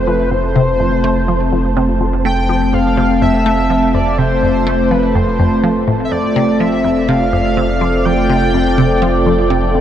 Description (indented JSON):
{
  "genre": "ambient, sequencer-driven space music",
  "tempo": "124 BPM",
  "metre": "4/4",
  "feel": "straight",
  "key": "F major",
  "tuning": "A4 = 440 Hz",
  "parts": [
    { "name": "pulse-width lead", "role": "melody", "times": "0.0-9.5 s", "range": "B4 to G5", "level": "-19 LUFS", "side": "equal", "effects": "chorus, analog delay" },
    { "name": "sweeping resonant pad", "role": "sustained chords", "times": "0.0-9.8 s", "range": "A3 to A5", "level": "-15 LUFS", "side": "equal", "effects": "chorus" },
    { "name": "warm sub bass", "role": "bass", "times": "0.0-9.8 s", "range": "F1", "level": "-20 LUFS", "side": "equal", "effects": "none" },
    { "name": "wind-like tuned noise texture", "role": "texture", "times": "1.7-9.8 s", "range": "none", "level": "barely audible", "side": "none", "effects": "none" },
    { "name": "resonant blip pluck", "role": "riff", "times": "0.1-9.8 s", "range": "F2 to A3", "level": "-18 LUFS", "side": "equal", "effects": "phaser, analog delay" }
  ],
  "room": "wet huge ambient reverb, RT60 7.2 s",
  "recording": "dark, warm production",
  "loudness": "-12 LUFS",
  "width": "side -10 dB against mid",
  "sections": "0.0-9.8 A section",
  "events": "none",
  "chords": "0.0 F",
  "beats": "| 0.32 0.80 1.28 1.77 | 2.25 2.73 3.22 3.70 | 4.19 4.67 5.15 5.64 | 6.12 6.61 7.09 7.57 | 8.06 8.54 9.02 9.51"
}